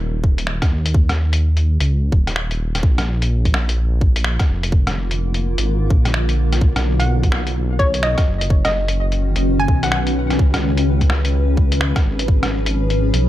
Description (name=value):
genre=future garage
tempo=127 BPM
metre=4/4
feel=swing 63% on 16ths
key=unclear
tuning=A4 = 440 Hz
part: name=dark detuned saw bass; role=bass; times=0.0-13.3 s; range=Eb1 to Eb2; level=-18 LUFS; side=equal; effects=none
part: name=electronic kick drum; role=drums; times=0.2-12.4 s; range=none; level=-15 LUFS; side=equal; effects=small room reverb
part: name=lo-fi sampler-style drum kit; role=drums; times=0.4-13.2 s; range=finger snaps, hi-hat, rim click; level=-24 LUFS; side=equal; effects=small room reverb
part: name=granular cloud pad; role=sustained chords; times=4.3-13.3 s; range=D3 to B4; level=-24 LUFS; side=left 1 dB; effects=built-in reverb, sidechain pumping
part: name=hollow square pluck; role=melody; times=7.0-10.0 s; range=C#5 to Ab5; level=-23 LUFS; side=equal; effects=chorus, tape echo
room=digital ambience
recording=echo-heavy mix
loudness=-15 LUFS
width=side -14 dB against mid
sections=0.0-13.3 A section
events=none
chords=0.0 N.C.; 2.8 Bb; 6.6 Badd9; 10.4 Db7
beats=0.00 0.47 | 0.94 1.42 1.89 2.36 | 2.83 3.31 3.78 4.25 | 4.72 5.20 5.67 6.14 | 6.61 7.08 7.56 8.03 | 8.50 8.97 9.45 9.92 | 10.39 10.86 11.34 11.81 | 12.28 12.75 13.23